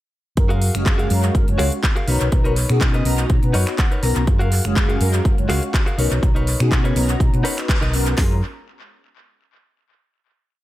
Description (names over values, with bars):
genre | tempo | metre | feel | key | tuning
filtered disco house | 123 BPM | 4/4 | swing 54% on 16ths | F# major | A4 = 440 Hz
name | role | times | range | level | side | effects
mellow synth brass | accompaniment | 0.4-8.4 s | G#3 to A#5 | -24 LUFS | left 1 dB | chorus, phaser, sidechain pumping
hollow-body short-scale fingered electric bass | bass | 0.4-8.4 s | F#1 to B2 | -20 LUFS | equal | sidechain pumping
house drum kit | drums | 0.4-8.3 s | hi-hat, kick drum, snare drum | -19 LUFS | equal | studio reverb
house drum kit | drums | 0.4-8.2 s | finger snaps, handclaps, hi-hat | -26 LUFS | equal | sidechain pumping on hats, studio reverb, tape echo
direct-recorded clean electric guitar | riff | 0.5-8.4 s | D#4 to A#5 | -27 LUFS | left 1 dB | vintage 12-bit sampler grit, sidechain pumping
room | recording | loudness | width
little or no reverb | echo-heavy mix | -16 LUFS | side -15 dB against mid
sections
0.4-8.2 drop; 8.2-10.1 final chord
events
drop 0.4-8.2; clean electric guitar fill 3.3-4.3; band accent 7.7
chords
0.4 F#maj9; 2.1 Bmaj9; 4.3 F#maj9; 6.0 Bmaj9; 8.2 F#maj9